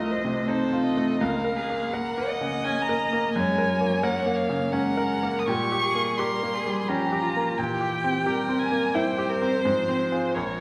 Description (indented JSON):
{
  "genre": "classical, slow romantic movement for piano quartet",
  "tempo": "85 BPM",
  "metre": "3/4",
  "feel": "uneven beats, rubato",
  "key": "F minor from 5.5 s",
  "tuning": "A4 = 439 Hz",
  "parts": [
    { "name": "rich violin", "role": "melody", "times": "0.0-10.6 s", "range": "Bb4 to Eb6", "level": "-31 LUFS", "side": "equal", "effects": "none" },
    { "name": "warm cello", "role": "second line", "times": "0.0-10.6 s", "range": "E3 to C4", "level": "-34 LUFS", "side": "equal", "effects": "none" },
    { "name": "warm violin", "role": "second line", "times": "0.0-10.6 s", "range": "F4 to Eb5", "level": "-32 LUFS", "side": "equal", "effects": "none" },
    { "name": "bright grand piano", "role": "accompaniment", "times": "0.0-10.6 s", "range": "Bb1 to Bb4", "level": "-29 LUFS", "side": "equal", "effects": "none" }
  ],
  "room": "wet recital hall reverb, RT60 1.4 s",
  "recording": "none",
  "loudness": "-25 LUFS",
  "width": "mono",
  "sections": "0.0-10.6 A section",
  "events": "none",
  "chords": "0.0 F7/C; 1.2 Bbm/Db; 3.4 Gb; 5.5 Gdim/Bb; 7.6 C7/Bb; 9.6 Fm/Ab"
}